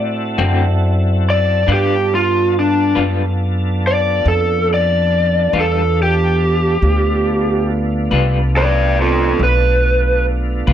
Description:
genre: blues.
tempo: 47 BPM (dotted quarters).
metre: 12/8.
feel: straight.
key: unclear.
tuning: A4 = 440 Hz.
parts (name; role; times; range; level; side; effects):
lead guitar through a small cranked amp; melody; 0.0-10.3 s; D4 to D5; -16 LUFS; equal; overdrive, plate reverb.
tonewheel organ; sustained chords; 0.0-10.7 s; A3 to A4; -24 LUFS; right 2 dB; chorus vibrato, slow rotary speaker, plate reverb.
upright bass; bass; 0.0-10.7 s; B1 to A2; -16 LUFS; equal; none.
electric guitar through a small old amp; accompaniment; 0.4-10.7 s; D3 to B4; -21 LUFS; left 4 dB; tremolo, plate reverb.
room: light reverb.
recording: none.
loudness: -13 LUFS.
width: side -10 dB against mid.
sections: 0.0-10.7 A section.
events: lead electric guitar solo 0.0-10.7.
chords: 0.0 D7; 1.7 G7.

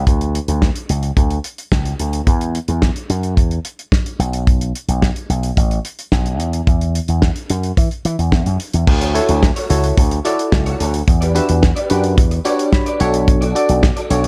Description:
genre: early-eighties boogie funk.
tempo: 109 BPM.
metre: 4/4.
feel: straight.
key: unclear.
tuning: A4 = 440 Hz.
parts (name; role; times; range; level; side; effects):
FM electric piano; accompaniment; 0.0, 9.1-14.3 s; D4 to B5; -21 LUFS; equal; chorus.
slap bass with an envelope filter; bass; 0.0-14.3 s; A1 to E3; -20 LUFS; equal; none.
damped 70s drum kit; drums; 0.1-14.3 s; crash cymbal, hi-hat, kick drum, snare drum; -19 LUFS; equal; none.
electric guitar at the edge of break-up; riff; 8.9-14.3 s; F#4 to E5; -27 LUFS; equal; ensemble chorus.
room: small room ambience.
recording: dark, warm production.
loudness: -17 LUFS.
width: mono.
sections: 0.1-8.9 A section; 8.9-14.3 B section.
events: FM electric piano fill 12.5-13.3.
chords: 0.1 N.C.; 2.3 Esus2; 4.2 N.C.; 6.4 Esus2; 8.9 Dmaj7; 11.1 Em7; 13.0 Bm7.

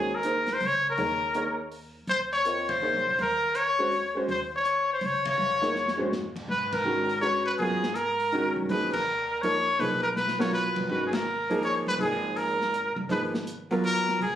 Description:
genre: modal jazz.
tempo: 163 BPM.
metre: 3/4.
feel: swing 65% on 8ths.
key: G# dorian from 6.5 s.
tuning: A4 = 440 Hz.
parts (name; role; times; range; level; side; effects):
breathy trumpet; melody; 0.0-14.4 s; G#4 to Db5; -26 LUFS; left 1 dB; plate reverb.
clear baby grand piano; accompaniment; 0.0-14.2 s; D#3 to Eb5; -30 LUFS; right 1 dB; none.
upright bass; bass; 0.0-14.4 s; G1 to Bb2; -39 LUFS; equal; none.
open jazz drum kit; drums; 0.2-14.3 s; crash cymbal, hi-hat, kick drum, ride cymbal, snare drum, toms; -37 LUFS; left 1 dB; none.
room: wet club reverb, RT60 0.5 s.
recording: recorded on a phone in the room, club reverb.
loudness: -24 LUFS.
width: side -10 dB against mid.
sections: 0.0-6.5 A section; 6.5-14.4 B section.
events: band accent 2.6, 5.2, 6.7, 8.9, 11.1; drum fill 5.8-6.1, 10.2-10.5.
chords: 0.0 Eb7(no3); 2.1 Bbm/Eb; 6.5 G#m69.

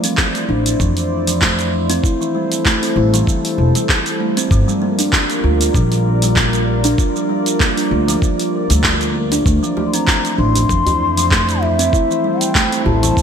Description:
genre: organic downtempo.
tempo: 97 BPM.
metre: 4/4.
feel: swing 55% on 16ths.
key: G dorian.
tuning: A4 = 440 Hz.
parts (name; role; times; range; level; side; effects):
warbly tape-like pad; sustained chords; 0.0-13.2 s; G3 to D5; -22 LUFS; left 1 dB; chorus, built-in reverb, sidechain pumping.
kalimba; arpeggios; 0.0-13.2 s; E3 to F4; -19 LUFS; right 1 dB; digital delay.
deep house drum kit; drums; 0.0-13.2 s; handclaps, hi-hat, shaker; -19 LUFS; right 1 dB; gated reverb.
electronic kick drum; drums; 0.2-13.2 s; none; -17 LUFS; equal; overdrive.
upright bass; bass; 0.5-13.1 s; E1 to F2; -17 LUFS; equal; none.
djembe; percussion; 9.8-13.1 s; none; -24 LUFS; right 1 dB; none.
mellow hollow bansuri; melody; 9.9-13.2 s; E5 to C6; -19 LUFS; left 2 dB; vintage 12-bit sampler grit, ping-pong delay.
room: light reverb, small room ambience.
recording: bright 1980s-style digital production.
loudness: -13 LUFS.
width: side -7 dB against mid.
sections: 0.0-13.2 A section.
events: none.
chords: 0.0 Dm9; 2.0 Am7; 4.5 Gm7; 9.5 Dm9; 11.9 Am7.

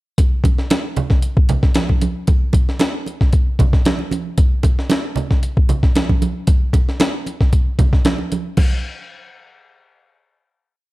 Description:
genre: funk.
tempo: 114 BPM.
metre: 4/4.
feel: straight.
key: none.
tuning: none.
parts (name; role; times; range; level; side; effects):
breakbeat sampler-style drum kit; drums; 0.2-8.7 s; crash cymbal, hi-hat, kick drum, snare drum; -15 LUFS; equal; none.
congas; percussion; 0.2-8.8 s; none; -23 LUFS; right 4 dB; none.
room: light reverb, digital ambience.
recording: none.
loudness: -14 LUFS.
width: side -19 dB against mid.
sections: 0.2-8.6 breakdown; 8.6-10.7 final hit.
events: none.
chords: none.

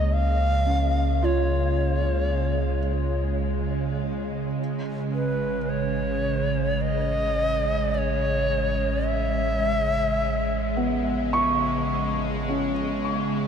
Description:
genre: ambient.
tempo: 54 BPM.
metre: 4/4.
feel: straight.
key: unclear.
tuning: A4 = 439 Hz.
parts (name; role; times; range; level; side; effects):
bright reedy long shakuhachi; melody; 0.0-11.3 s; Cb5 to F5; -27 LUFS; left 1 dB; ping-pong delay.
felt-muted upright piano; arpeggios; 0.0-13.5 s; Bb3 to C#6; -28 LUFS; right 1 dB; ping-pong delay.
warm sub bass; bass; 0.0-13.5 s; A1 to Db2; -27 LUFS; equal; none.
bowed-like drone; drone; 0.0-13.5 s; Db3 to Ab3; -28 LUFS; right 3 dB; built-in reverb.
room: wet huge ambient reverb, RT60 8.6 s.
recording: none.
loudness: -22 LUFS.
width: side -7 dB against mid.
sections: 0.0-13.5 A section.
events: none.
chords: 0.0 Db; 4.6 A.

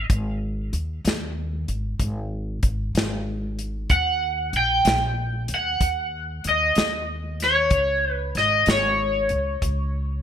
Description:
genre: slow blues.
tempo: 63 BPM (dotted quarters).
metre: 12/8.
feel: straight.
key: unclear.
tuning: A4 = 440 Hz.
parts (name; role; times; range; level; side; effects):
overdriven semi-hollow guitar; melody; 0.0-10.2 s; C#5 to G5; -21 LUFS; equal; analog chorus.
upright bass; bass; 0.0-10.2 s; G#1 to D#2; -27 LUFS; equal; none.
warm soul drum kit; drums; 0.1-9.8 s; hi-hat, kick drum, snare drum; -24 LUFS; left 1 dB; gated reverb.
room: moderate plate reverb, RT60 1.6 s, small room ambience.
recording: bright 1980s-style digital production.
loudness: -21 LUFS.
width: side -9 dB against mid.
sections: 0.0-10.2 A section.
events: none.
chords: 0.0 G#5; 3.9 D#; 7.7 C#5.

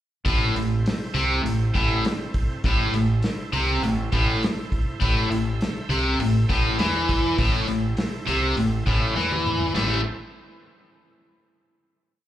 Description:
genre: blues rock power trio and southern rock.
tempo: 101 BPM.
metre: 4/4.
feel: straight.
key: A minor.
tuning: A4 = 442 Hz.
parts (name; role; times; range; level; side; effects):
overdriven tonewheel organ; sustained chords; 0.3-10.2 s; C4 to E5; -36 LUFS; right 4 dB; slow rotary speaker.
biting overdriven guitar; riff; 0.3-10.0 s; A2 to A3; -23 LUFS; left 1 dB; slapback echo.
growling fingered electric bass; bass; 0.3-10.0 s; A1 to E2; -26 LUFS; right 1 dB; overdrive.
vintage drum kit; drums; 0.3-9.9 s; crash cymbal, hi-hat, kick drum, snare drum, toms; -26 LUFS; equal; none.
room: small room ambience.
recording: live gig heard through the venue's PA, club reverb.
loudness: -20 LUFS.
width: side -12 dB against mid.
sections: 0.3-9.8 riff; 9.8-12.2 final chord.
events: drum fill 9.2-9.8.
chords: 0.3 Am.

